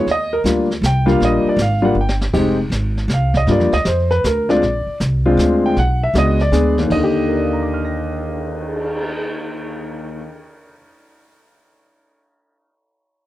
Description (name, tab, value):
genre	jazz piano trio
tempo	158 BPM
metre	3/4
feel	swing 65% on 8ths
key	Eb major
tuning	A4 = 440 Hz
part	warm concert grand piano	melody	0.0-10.9 s	Eb2 to Bb6	-17 LUFS	left 1 dB	none
part	upright bass	bass	0.0-10.3 s	F1 to G2	-19 LUFS	equal	none
part	jazz brush drum kit	drums	0.1-9.1 s	brushed snare drum, crash cymbal, cymbal swell, hi-hat, kick drum, snare drum	-26 LUFS	equal	none
room	studio reverb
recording	dry, close 1970s-style studio recording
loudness	-15 LUFS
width	side -15 dB against mid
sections	0.0-2.3 A section; 2.3-6.9 B section; 6.9-9.2 C section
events	drum fill 2.0-2.3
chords	0.1 Ebmaj7; 2.3 Fm7; 3.5 Gm7 (rootless); 4.6 Bb9; 5.8 Bm69; 6.9 Ebmaj7